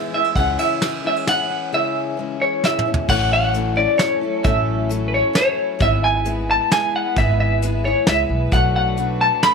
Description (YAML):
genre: indie folk with a building arrangement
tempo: 132 BPM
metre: 3/4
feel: straight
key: A major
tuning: A4 = 440 Hz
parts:
  - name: semi-hollow electric guitar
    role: melody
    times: 0.0-9.5 s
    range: B4 to B5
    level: -19 LUFS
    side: equal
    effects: tremolo, slapback echo
  - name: fingerpicked steel-string acoustic guitar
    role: accompaniment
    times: 0.0-4.5 s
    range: B2 to G#4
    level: -31 LUFS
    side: left 9 dB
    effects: none
  - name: picked steel-string acoustic guitar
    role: accompaniment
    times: 0.0-9.5 s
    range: A2 to G#4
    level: -26 LUFS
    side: left 10 dB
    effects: none
  - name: upright bass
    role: bass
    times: 0.4-0.5, 3.1-9.3 s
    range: G#1 to C#2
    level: -22 LUFS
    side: equal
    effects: none
  - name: soft brush drum kit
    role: drums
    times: 0.4-9.5 s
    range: crash cymbal, hi-hat, kick drum, ride cymbal, snare drum, toms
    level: -22 LUFS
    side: equal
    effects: none
  - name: warm chamber string section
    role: sustained chords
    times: 3.1-9.5 s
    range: F#3 to B4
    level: -32 LUFS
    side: right 11 dB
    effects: none
room: light reverb, small room ambience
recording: 1960s-style stereo with parts hard left and right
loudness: -16 LUFS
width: side -5 dB against mid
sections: 0.0-3.1 A section; 3.1-9.5 B section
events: drum fill 2.6-3.1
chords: 0.4 C#m; 3.1 A6; 5.8 E/G#; 8.5 Bm7